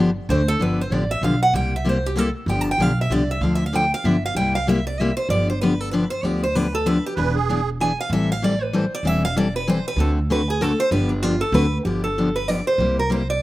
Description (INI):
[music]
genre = acoustic string swing (jazz manouche)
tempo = 192 BPM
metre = 3/4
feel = swing 60% on 8ths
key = G mixolydian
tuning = A4 = 439 Hz
[part]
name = picked steel-string acoustic guitar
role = accompaniment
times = 0.0-13.2 s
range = C3 to A4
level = -22 LUFS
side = left 2 dB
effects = none
[part]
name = upright bass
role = bass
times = 0.0-13.4 s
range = E1 to D2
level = -24 LUFS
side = right 1 dB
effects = none
[part]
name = picked steel-string acoustic guitar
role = melody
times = 0.3-13.4 s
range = D4 to A5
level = -23 LUFS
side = right 2 dB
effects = none
[part]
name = musette accordion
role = second line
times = 7.2-7.7 s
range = G#4 to B4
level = -24 LUFS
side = right 9 dB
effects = slapback echo
[sound]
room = little or no reverb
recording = recorded outdoors, with no room sound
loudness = -18 LUFS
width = side -16 dB against mid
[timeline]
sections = 0.6-11.9 A section; 11.9-13.4 B section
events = steel-string acoustic guitar solo 0.0-11.9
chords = 0.3 D7; 0.6 G7; 1.6 C7; 2.5 G7; 3.4 Dm7; 4.0 G7; 4.4 C7; 5.3 G7; 7.2 E7; 8.1 Am7; 10.0 D7; 10.9 G7; 11.5 D7; 11.9 G7; 12.8 C7